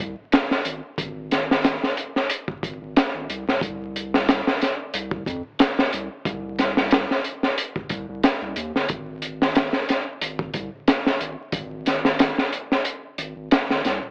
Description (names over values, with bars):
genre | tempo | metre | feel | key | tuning
trip hop | 91 BPM | 4/4 | swing 55% on 16ths | unclear | A4 = 441 Hz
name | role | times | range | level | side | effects
round analog bass | bass | 0.0-14.1 s | Eb1 to F2 | -33 LUFS | equal | none
crunchy breakbeat drum kit | drums | 0.0-14.0 s | hi-hat, kick drum, snare drum | -20 LUFS | equal | none
room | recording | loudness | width
moderate spring reverb, RT60 1.9 s | vinyl crackle, AM radio sound | -21 LUFS | side -34 dB against mid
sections
0.0-14.1 A section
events
kick drops out 12.8-14.1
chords
none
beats
0.32 | 0.98 1.64 2.30 2.96 | 3.62 4.28 4.93 5.59 | 6.25 6.91 7.57 8.23 | 8.89 9.55 10.21 10.87 | 11.53 12.19 12.85 13.51